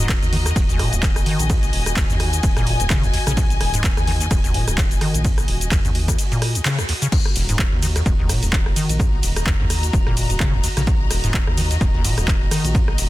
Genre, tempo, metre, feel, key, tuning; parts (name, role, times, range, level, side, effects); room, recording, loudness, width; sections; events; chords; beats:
acid house; 128 BPM; 4/4; swing 56% on 16ths; Eb minor pentatonic; A4 = 440 Hz
acid bass, square; riff; 0.0-12.8 s; Db2 to Eb3; -24 LUFS; equal; sidechain pumping, ping-pong delay
round analog bass; bass; 0.0-13.1 s; Eb1 to Eb2; -24 LUFS; equal; sidechain pumping
rich studio string section; texture; 0.0-13.1 s; Gb4 to Bb5; -28 LUFS; left 4 dB; sidechain pumping
electronic kick drum; drums; 0.1-12.9 s; -19 LUFS; equal; overdrive
punchy analog drum machine; drums; 0.1-13.1 s; crash cymbal, handclaps, hi-hat, ride cymbal, rim click, shaker; -25 LUFS; equal
little or no reverb; dense, heavily limited modern master; -16 LUFS; side -16 dB against mid
0.0-7.1 A section; 7.1-13.1 A section
drop 0.0-7.1, 7.1-13.1; band accent 6.7
0.0 Ebm
0.09 0.56 1.03 | 1.50 1.97 2.44 2.90 | 3.37 3.84 4.31 4.78 | 5.25 5.72 6.18 6.65 | 7.12 7.59 8.06 8.53 | 9.00 9.47 9.94 10.40 | 10.87 11.34 11.81 12.28 | 12.75